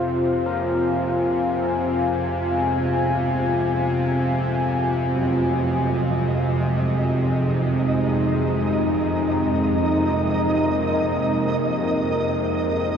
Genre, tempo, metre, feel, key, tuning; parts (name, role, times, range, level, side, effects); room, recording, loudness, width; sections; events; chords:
ambient; free time; A4 = 439 Hz
deep dark ambient pad; sustained chords; 0.0-13.0 s; Ab3 to Bb5; -23 LUFS; left 2 dB; chorus, built-in reverb
old church bells; arpeggios; 0.0-13.0 s; Bb2 to Bb4; -35 LUFS; left 2 dB
bowed-like drone; drone; 0.0-13.0 s; F2 to C3; -22 LUFS; right 1 dB; built-in reverb
flickering grainy texture; texture; 5.2-13.0 s; Eb5; -29 LUFS; right 1 dB; built-in reverb
wet huge ambient reverb, RT60 8.8 s; -19 LUFS; side -7 dB against mid
0.0-13.0 A section
0.0 Fm; 4.8 Absus2/F